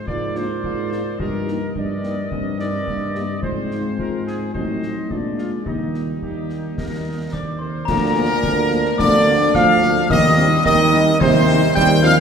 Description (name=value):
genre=military-style march for wind band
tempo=108 BPM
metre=2/4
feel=straight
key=Eb major, Bb major from 7.9 s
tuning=A4 = 445 Hz
part: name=clear trumpet section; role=melody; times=0.0-12.2 s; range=Eb4 to G5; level=-23 LUFS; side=equal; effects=none
part: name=warm woodwind section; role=second line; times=0.0-12.2 s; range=F4 to G5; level=-26 LUFS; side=left 2 dB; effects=none
part: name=mellow euphonium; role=second line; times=0.1-12.2 s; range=Bb2 to G4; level=-24 LUFS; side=right 4 dB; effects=none
part: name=warm tuba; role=bass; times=0.1-12.2 s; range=D2 to Bb2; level=-22 LUFS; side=equal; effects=none
part: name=concert bass drum, concert snare drum and clash cymbals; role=drums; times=0.1-12.2 s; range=none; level=-28 LUFS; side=left 1 dB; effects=none
part: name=mellow French horn section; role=accompaniment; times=0.4-12.1 s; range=F3 to G4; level=-28 LUFS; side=left 2 dB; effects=none
part: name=glockenspiel with soft plastic mallets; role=second line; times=7.3-12.2 s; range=Bb5 to G6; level=-25 LUFS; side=left 5 dB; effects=none
part: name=mellow wooden piccolo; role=second line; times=7.3-12.2 s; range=Bb5 to G6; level=-24 LUFS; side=left 2 dB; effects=none
part: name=mellow trombone section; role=sustained chords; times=7.9-12.2 s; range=F3 to D4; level=-26 LUFS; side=right 2 dB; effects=none
room=wet concert hall reverb, RT60 2.3 s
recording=recorded in a church or concert hall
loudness=-16 LUFS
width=side -7 dB against mid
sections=0.0-7.9 A section; 7.9-12.2 B section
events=none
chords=0.1 Bb7/Ab; 1.2 Eb/G; 3.4 Fm/Ab; 4.5 Adim7; 5.1 Bb7; 5.7 Eb; 7.9 Bb/D; 10.1 Cm/Eb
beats=| 0.08 0.64 | 1.20 1.75 | 2.31 2.87 | 3.43 3.98 | 4.54 5.10 | 5.66 6.21 | 6.77 7.32 | 7.88 8.44 | 8.99 9.55 | 10.10 10.65 | 11.21 11.76